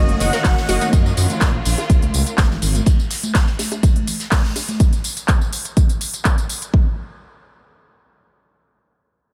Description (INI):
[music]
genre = progressive house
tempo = 124 BPM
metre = 4/4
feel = straight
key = unclear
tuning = A4 = 436 Hz
[part]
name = soft supersaw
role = melody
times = 0.0-0.9 s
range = Eb5 to Gb5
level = -29 LUFS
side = equal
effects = sidechain pumping, tape echo
[part]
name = clear studio string section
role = sustained chords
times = 0.0-2.8 s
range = Eb3 to Bb4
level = -31 LUFS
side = equal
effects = sidechain pumping
[part]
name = supersaw stab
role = stabs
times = 0.0-1.1 s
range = Bb3 to Eb5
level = -30 LUFS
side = equal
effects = ensemble chorus, sidechain pumping, dub echo
[part]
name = dark detuned saw bass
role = bass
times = 0.0-2.8 s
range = Gb1 to Gb2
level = -23 LUFS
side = equal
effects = tube saturation, sidechain pumping
[part]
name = big-room dance drum kit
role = drums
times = 0.1-6.7 s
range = handclaps, hi-hat, tambourine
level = -26 LUFS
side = equal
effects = overdrive, studio reverb
[part]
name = congas and bongos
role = percussion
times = 0.1-4.8 s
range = none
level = -30 LUFS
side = equal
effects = overdrive, sidechain pumping on perc, studio reverb
[part]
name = unplugged drum kit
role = drums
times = 0.2-4.7 s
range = hi-hat, ride cymbal, snare drum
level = -36 LUFS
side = equal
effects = sidechain pumping on cymbals, high-pass filter on cymbals, studio reverb, sidechain pumping on hats, high-pass filter on hats, high-pass filter on snare, high-pass filter on room
[part]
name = analog pluck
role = arpeggios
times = 0.3-0.9 s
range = Eb4 to Bb5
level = -31 LUFS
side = equal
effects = none
[part]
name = electronic kick drum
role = drums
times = 0.4-6.9 s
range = none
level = -18 LUFS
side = equal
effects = overdrive, studio reverb
[sound]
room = studio ambience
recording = none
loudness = -18 LUFS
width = mono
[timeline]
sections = 0.0-6.7 A section; 6.7-9.3 B section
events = drop 0.0-6.7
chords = 0.0 Gb6; 2.9 N.C.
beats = 0.45 | 0.93 1.41 1.90 2.38 | 2.87 3.35 3.83 4.32 | 4.80 5.28 5.77 6.25 | 6.74